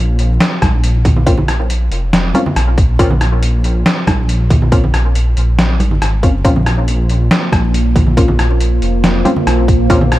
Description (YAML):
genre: deep dubstep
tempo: 139 BPM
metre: 4/4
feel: swing 53% on 16ths, half-time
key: Bb minor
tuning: A4 = 440 Hz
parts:
  - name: dark detuned saw bass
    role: bass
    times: 0.0-10.2 s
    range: F1 to Bb1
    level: -13 LUFS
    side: equal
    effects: none
  - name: trip hop sampler-style drum kit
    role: drums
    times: 0.2-10.2 s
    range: hi-hat, rim click, snare drum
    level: -17 LUFS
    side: equal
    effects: none
  - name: electronic kick drum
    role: drums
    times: 0.6-10.0 s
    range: none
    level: -13 LUFS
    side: equal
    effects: none
  - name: congas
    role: percussion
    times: 0.6-10.1 s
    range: none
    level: -20 LUFS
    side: right 1 dB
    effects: dub echo
  - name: filtered dub chord stab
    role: stabs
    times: 1.3-10.0 s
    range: Bb3 to F4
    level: -20 LUFS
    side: left 1 dB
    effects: chorus, cassette tape, dub echo
  - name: deep dark ambient pad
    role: sustained chords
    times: 7.4-10.2 s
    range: Bb3 to C5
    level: -19 LUFS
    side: right 1 dB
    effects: chorus, built-in reverb
room: little or no reverb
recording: vinyl crackle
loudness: -10 LUFS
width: side -16 dB against mid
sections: 0.0-10.2 A section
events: none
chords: 0.0 Bbmadd9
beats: 0.40 0.83 | 1.27 1.70 2.13 2.56 | 2.99 3.42 3.86 4.29 | 4.72 5.15 5.58 6.01 | 6.45 6.88 7.31 7.74 | 8.17 8.61 9.04 9.47 | 9.90